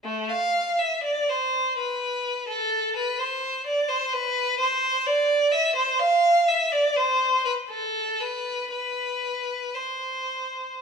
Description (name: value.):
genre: classical, baroque-style suite movement for unaccompanied violin.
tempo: 62 BPM.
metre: 3/4.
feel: uneven beats, rubato.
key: C major from 5.8 s.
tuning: A4 = 440 Hz.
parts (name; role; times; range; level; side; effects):
clear violin; solo; 0.0-10.8 s; A3 to F5; -22 LUFS; equal; none.
room: wet stone room reverb, RT60 1.3 s.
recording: minimal, uncompressed stereo recording.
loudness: -22 LUFS.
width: side -6 dB against mid.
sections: 0.0-10.8 A section.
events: none.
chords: none.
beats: | 0.04 1.03 2.00 | 2.95 3.88 4.82 | 5.76 6.72 7.70 | 8.71 9.75 10.78.